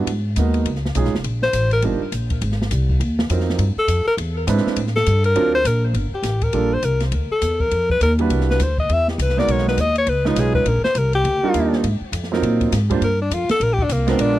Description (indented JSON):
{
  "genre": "jazz, small-group swing and bop",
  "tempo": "204 BPM",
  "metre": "4/4",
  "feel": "swing 61% on 8ths",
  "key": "unclear",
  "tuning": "A4 = 439 Hz",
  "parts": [
    { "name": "warm grand piano", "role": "accompaniment", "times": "0.0-14.4 s", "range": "Gb3 to C5", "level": "-22 LUFS", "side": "right 6 dB", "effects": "none" },
    { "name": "upright bass", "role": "bass", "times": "0.0-14.4 s", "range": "E#1 to Bb2", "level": "-20 LUFS", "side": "equal", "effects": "none" },
    { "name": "open jazz drum kit", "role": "drums", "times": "0.1-14.3 s", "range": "hi-hat, kick drum, ride cymbal, snare drum", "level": "-28 LUFS", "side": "equal", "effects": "none" },
    { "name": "clear alto saxophone", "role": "melody", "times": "1.4-14.4 s", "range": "Bb3 to E5", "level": "-20 LUFS", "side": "left 2 dB", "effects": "tape echo" }
  ],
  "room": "little or no reverb",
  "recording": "dry, close 1970s-style studio recording",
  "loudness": "-17 LUFS",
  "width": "side -14 dB against mid",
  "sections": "0.0-6.0 A section; 6.0-14.4 A section",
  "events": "alto saxophone solo 0.0-14.4",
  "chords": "0.1 Abm7; 0.7 C#9; 1.2 Ebmaj7; 2.4 Ab13; 3.6 Gsus2; 4.2 E7b13; 4.8 Gsus2; 5.4 D7alt; 6.0 Gm9; 7.1 D5; 7.7 Ebmaj9; 8.3 Cmaj9#11; 9.5 Abm7; 10.1 C#9; 10.7 Ebmaj7; 11.8 Ab13; 13.0 Gm7"
}